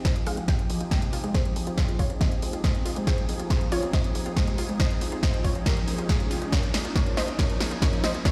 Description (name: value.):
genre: uplifting trance.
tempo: 139 BPM.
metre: 4/4.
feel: straight.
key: F minor.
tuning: A4 = 441 Hz.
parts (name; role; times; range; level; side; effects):
filtered supersaw swell; sustained chords; 0.0-8.3 s; F3 to Ab4; -38 LUFS; equal; sidechain pumping.
tight sequencer bass; bass; 0.0-8.2 s; F1 to F2; -44 LUFS; equal; none.
electronic kick drum; drums; 0.0-8.3 s; none; -27 LUFS; equal; none.
punchy analog drum machine; drums; 0.0-8.3 s; hi-hat, snare drum; -34 LUFS; equal; sidechain pumping on hats.
riser; sound effects; 0.0-8.3 s; none; -44 LUFS; equal; none.
unison pluck; melody; 0.1-8.3 s; F4 to G5; -37 LUFS; equal; sidechain pumping, tape echo.
unison pluck; arpeggios; 0.1-8.3 s; F2 to F4; -37 LUFS; equal; sidechain pumping, tape echo.
room: light reverb.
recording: played on a big sound system in a bare room, stone room reverb.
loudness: -26 LUFS.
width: mono.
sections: 0.0-8.3 A section.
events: build-up 0.0-8.3; drum fill 0.0-8.3; filter sweep on synth pluck 0.0-8.3; filter sweep on synth arpeggio sound 0.0-8.3.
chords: 0.0 Fm7; 6.5 Dbsus2.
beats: 0.05 0.48 0.91 | 1.34 1.78 2.21 2.64 | 3.07 3.50 3.94 4.37 | 4.80 5.23 5.66 6.09 | 6.53 6.96 7.39 7.82 | 8.25.